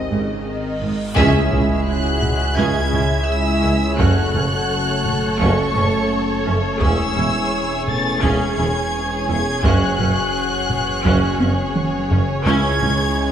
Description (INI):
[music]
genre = cinematic, hybrid orchestral and electronic film score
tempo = 85 BPM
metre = 4/4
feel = straight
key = C# minor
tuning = A4 = 439 Hz
[part]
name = rich chamber violin section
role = melody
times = 0.0-13.3 s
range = D#5 to A6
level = -25 LUFS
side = left 1 dB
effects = none
[part]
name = warm symphonic violin section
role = second line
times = 0.0-13.3 s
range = G#4 to E5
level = -24 LUFS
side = equal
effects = none
[part]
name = rich symphonic viola section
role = accompaniment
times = 0.0-12.9 s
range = C#3 to G#4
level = -26 LUFS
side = equal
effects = none
[part]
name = dark French horn section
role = sustained chords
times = 0.0-13.3 s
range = A3 to G#4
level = -29 LUFS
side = left 4 dB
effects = none
[part]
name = hollow soft pad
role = sustained chords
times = 0.0-13.3 s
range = D#3 to D#5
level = -26 LUFS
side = equal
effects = chorus
[part]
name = dark detuned saw bass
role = bass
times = 0.0-13.3 s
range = E1 to C#2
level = -25 LUFS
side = equal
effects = none
[part]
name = reverse cymbal and sub drop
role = sound effects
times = 0.8-4.0 s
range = none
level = -27 LUFS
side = equal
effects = none
[part]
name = dark studio double bass section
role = bass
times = 0.1-12.9 s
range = E1 to C#2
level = -24 LUFS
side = right 2 dB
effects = none
[part]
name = rich symphonic cello section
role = bass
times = 0.1-12.9 s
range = C#2 to G#2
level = -25 LUFS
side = right 2 dB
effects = none
[part]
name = warm tuba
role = bass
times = 0.1-13.0 s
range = E1 to C#2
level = -26 LUFS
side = right 3 dB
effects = none
[part]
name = taiko ensemble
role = drums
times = 1.2-13.1 s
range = none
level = -24 LUFS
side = equal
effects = none
[sound]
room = moderate concert hall reverb, RT60 2.0 s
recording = small room ambience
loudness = -16 LUFS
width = side -9 dB against mid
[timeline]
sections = 0.0-1.2 A section; 1.2-13.3 B section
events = reverse cymbal 0.8-1.2; band accent 1.2-1.9; impact 1.2-4.0; drum fill 11.4-12.5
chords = 0.0 G#; 1.2 C#m; 4.0 F#m; 6.8 C#m/E; 9.6 F#sus2; 12.5 C#m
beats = 0.46 | 1.16 1.87 2.57 3.28 | 3.99 4.69 5.40 6.10 | 6.81 7.51 8.22 8.93 | 9.63 10.34 11.04 11.75 | 12.46 13.16